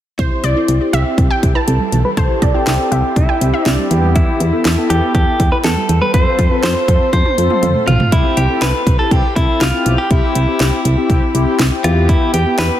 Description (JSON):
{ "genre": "synth-pop", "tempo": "121 BPM", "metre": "4/4", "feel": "straight", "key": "C major", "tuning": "A4 = 440 Hz", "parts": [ { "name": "direct-recorded clean electric guitar", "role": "melody", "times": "0.2-12.8 s", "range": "E4 to C5", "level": "-18 LUFS", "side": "equal", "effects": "spring reverb, low-pass filter, shimmer reverb" }, { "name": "analog pluck", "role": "second line", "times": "0.2-3.7 s", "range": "C5 to A5", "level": "-23 LUFS", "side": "right 1 dB", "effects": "chorus, shimmer reverb, digital delay" }, { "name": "mellow synth brass", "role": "accompaniment", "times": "0.2-12.8 s", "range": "B3 to A4", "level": "-20 LUFS", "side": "left 2 dB", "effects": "chorus, low-pass filter, shimmer reverb" }, { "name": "soft round pluck", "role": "arpeggios", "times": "0.2-8.1 s", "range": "E3 to C6", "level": "-24 LUFS", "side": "right 3 dB", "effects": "chorus, low-pass filter, shimmer reverb, digital delay" }, { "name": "solid FM bass", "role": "bass", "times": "0.2-12.7 s", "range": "B1 to F2", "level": "-16 LUFS", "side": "equal", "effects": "none" }, { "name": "house drum kit", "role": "drums", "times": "0.2-12.7 s", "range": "hi-hat, kick drum, snare drum, toms", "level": "-16 LUFS", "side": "equal", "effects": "overdrive" } ], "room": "moderate recital hall reverb, RT60 1.4 s", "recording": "dense, heavily limited modern master", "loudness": "-12 LUFS", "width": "side -12 dB against mid", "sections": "0.2-8.1 A section; 8.1-12.8 B section", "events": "filter sweep 0.2-8.1; drum fill 7.1-8.1", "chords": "0.2 C; 3.9 Em; 6.1 F; 8.1 C; 11.8 Em" }